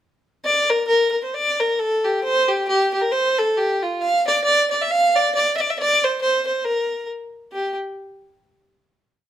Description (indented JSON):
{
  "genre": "celtic folk",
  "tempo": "136 BPM",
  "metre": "2/4",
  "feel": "swing 57% on 8ths",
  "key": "G dorian",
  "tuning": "A4 = 440 Hz",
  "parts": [
    { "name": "dark fiddle", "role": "solo", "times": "0.4-7.8 s", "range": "F4 to F5", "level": "-18 LUFS", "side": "equal", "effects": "none" }
  ],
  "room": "moderate studio reverb, RT60 0.7 s",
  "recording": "none",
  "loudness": "-18 LUFS",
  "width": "side -11 dB against mid",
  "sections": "0.5-7.5 A section; 7.5-8.4 final note",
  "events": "none",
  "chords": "none",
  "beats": "| 0.45 0.89 | 1.33 1.78 | 2.22 2.66 | 3.10 3.54 | 3.99 4.43 | 4.87 5.31 | 5.75 6.20 | 6.64 7.08 | 7.52"
}